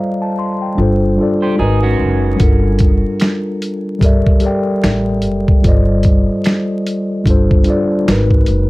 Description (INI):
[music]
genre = lo-fi hip hop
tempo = 74 BPM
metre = 4/4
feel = swing 59% on 16ths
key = G minor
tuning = A4 = 439 Hz
[part]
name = mellow tine electric piano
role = accompaniment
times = 0.0-8.7 s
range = G3 to C6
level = -16 LUFS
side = left 1 dB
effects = medium stereo tremolo, cassette tape, low-pass filter, plate reverb
[part]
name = upright bass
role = bass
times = 0.8-8.7 s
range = Gb1 to A1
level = -16 LUFS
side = equal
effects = none
[part]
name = electric guitar at the edge of break-up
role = second line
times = 1.4-2.4 s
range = C#4 to C5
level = -22 LUFS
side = right 5 dB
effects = spring reverb, low-pass filter, analog delay, plate reverb
[part]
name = boom bap sampler-style drum kit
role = drums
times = 2.4-8.7 s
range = finger snaps, hi-hat, kick drum, snare drum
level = -13 LUFS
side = equal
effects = none
[part]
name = finger snaps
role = percussion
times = 3.2-8.3 s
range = none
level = -31 LUFS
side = right 8 dB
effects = none
[sound]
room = moderate studio reverb, RT60 0.6 s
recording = dark, warm production, vinyl crackle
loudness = -12 LUFS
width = side -20 dB against mid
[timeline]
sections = 0.0-8.7 A section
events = none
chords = 0.0 F13/G; 0.8 Dm7/G; 1.6 Abm9; 2.4 Gm9; 4.0 Gm69; 5.6 F13/G; 7.3 Dm7/G; 8.1 Abm9